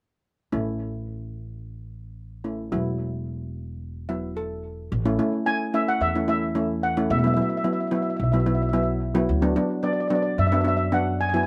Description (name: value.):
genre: calypso.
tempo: 110 BPM.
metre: 4/4.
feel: straight.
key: A major.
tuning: A4 = 441 Hz.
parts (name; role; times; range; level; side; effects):
steel pan; accompaniment; 0.5-11.5 s; F#3 to E5; -28 LUFS; equal; none.
upright bass; bass; 0.5-11.4 s; E1 to F#2; -30 LUFS; equal; none.
steel pan; melody; 5.5-11.5 s; D5 to G#5; -28 LUFS; equal; none.
room: light reverb.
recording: recorded outdoors, with no room sound.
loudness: -24 LUFS.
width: mono.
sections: 0.5-4.9 A section; 4.9-11.5 B section.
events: steel pan fill 3.8-4.9.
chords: 0.5 A; 2.7 Esus2; 4.9 A; 7.1 Esus2; 9.3 Bm/D.